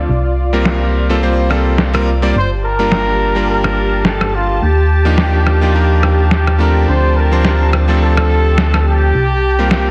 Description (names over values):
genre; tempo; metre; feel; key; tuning
nu-disco, nu disco; 106 BPM; 4/4; swing 56% on 16ths; G minor; A4 = 439 Hz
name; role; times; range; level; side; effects
bright electric grand piano; accompaniment; 0.0-9.9 s; F3 to D5; -20 LUFS; equal; none
lush unison pad; sustained chords; 0.0-9.9 s; F4 to A5; -25 LUFS; equal; chorus
chorused synth bass; bass; 0.0-9.9 s; G1 to Eb2; -16 LUFS; equal; none
electronic snare drum and rim click; drums; 0.7-9.8 s; none; -20 LUFS; equal; low-pass filter on snare, low-pass filter on room
mellow trumpet section; melody; 2.4-9.9 s; F4 to C5; -21 LUFS; equal; tape echo
room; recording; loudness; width
light reverb; heavily compressed radio sound, multiband compression; -13 LUFS; mono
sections
0.0-9.9 A section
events
none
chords
0.1 C7sus4; 2.4 Gm9; 4.6 Ebmaj9; 6.9 Dm7; 9.1 C7sus4